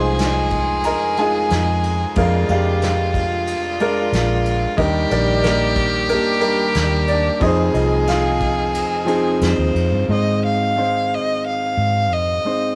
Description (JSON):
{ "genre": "acoustic folk-pop ballad", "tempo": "91 BPM", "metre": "4/4", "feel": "straight", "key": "F dorian", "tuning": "A4 = 440 Hz", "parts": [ { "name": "clear upright piano", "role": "melody", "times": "0.0-12.8 s", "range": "F1 to C6", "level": "-22 LUFS", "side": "equal", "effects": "cassette tape" }, { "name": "rich violin", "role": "second line", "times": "0.0-12.8 s", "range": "F4 to F5", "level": "-24 LUFS", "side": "equal", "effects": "cassette tape" }, { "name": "vintage muted fingered electric bass", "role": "bass", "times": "0.0-12.4 s", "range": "Bb1 to Ab2", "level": "-23 LUFS", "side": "equal", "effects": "none" }, { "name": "soft brush drum kit", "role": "drums", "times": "0.2-9.9 s", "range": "kick drum, ride cymbal, snare drum", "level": "-30 LUFS", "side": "equal", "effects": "none" } ], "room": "light reverb", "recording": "home recording on cassette", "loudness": "-18 LUFS", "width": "mono", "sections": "0.0-10.1 A section; 10.1-12.8 B section", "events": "violin solo 10.1-12.8", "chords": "0.0 Fm7; 2.2 Bb7/F; 4.8 Ebmaj7; 7.4 Fm7; 10.1 Ab", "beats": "0.19 0.85 1.51 | 2.17 2.82 3.47 4.12 | 4.78 5.44 6.10 6.76 | 7.42 8.08 8.75 9.42 | 10.10 10.77 11.45 12.11" }